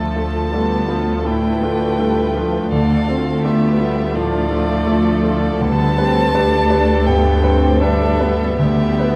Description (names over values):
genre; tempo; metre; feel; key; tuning
cinematic; 82 BPM; 4/4; rubato; D dorian; A4 = 443 Hz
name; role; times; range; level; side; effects
clear violin; melody; 0.0-9.2 s; D5 to A5; -26 LUFS; equal; none
rich studio violin section; melody; 0.0-9.2 s; F4 to B4; -32 LUFS; equal; none
warm symphonic violin section; second line; 0.0-9.2 s; A3 to D4; -26 LUFS; equal; none
clear concert grand piano; accompaniment; 0.0-9.2 s; D2 to B4; -21 LUFS; equal; none
warm symphonic viola section; accompaniment; 0.0-9.2 s; D3 to E4; -26 LUFS; equal; none
concert harp; arpeggios; 0.0-9.2 s; D3 to D5; -29 LUFS; equal; none
rich symphonic cello section; bass; 0.0-9.2 s; D2; -22 LUFS; equal; none
room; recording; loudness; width
wet scoring stage reverb, RT60 1.6 s; dark, warm production, vinyl crackle; -17 LUFS; mono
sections
0.0-9.2 A section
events
none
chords
0.0 Dm; 5.6 G/D